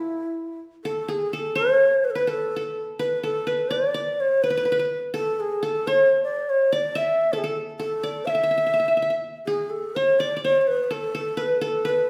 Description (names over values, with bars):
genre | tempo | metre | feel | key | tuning
Turkish makam ensemble | 250 BPM (eighths) | 9/8 | straight | unclear | A4 = 439 Hz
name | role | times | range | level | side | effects
breathy reedy low ney | melody | 0.0-12.1 s | E4 to F5 | -24 LUFS | equal | none
qanun | second line | 0.0-12.1 s | E4 to E5 | -32 LUFS | equal | none
room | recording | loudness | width
wet recital hall reverb, RT60 1.3 s | none | -23 LUFS | mono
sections
0.8-12.1 A section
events
none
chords
none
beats
0.11 0.35 0.59 | 0.83 1.07 1.31 1.55 1.79 2.03 2.27 2.51 2.75 | 2.99 3.23 3.47 3.71 3.95 4.19 4.43 4.67 4.91 | 5.15 5.39 5.63 5.87 6.11 6.35 6.59 6.83 7.07 | 7.31 7.55 7.79 8.03 8.27 8.51 8.75 8.98 9.22 | 9.46 9.70 9.94 10.18 10.42 10.66 10.90 11.14 11.38 | 11.62 11.86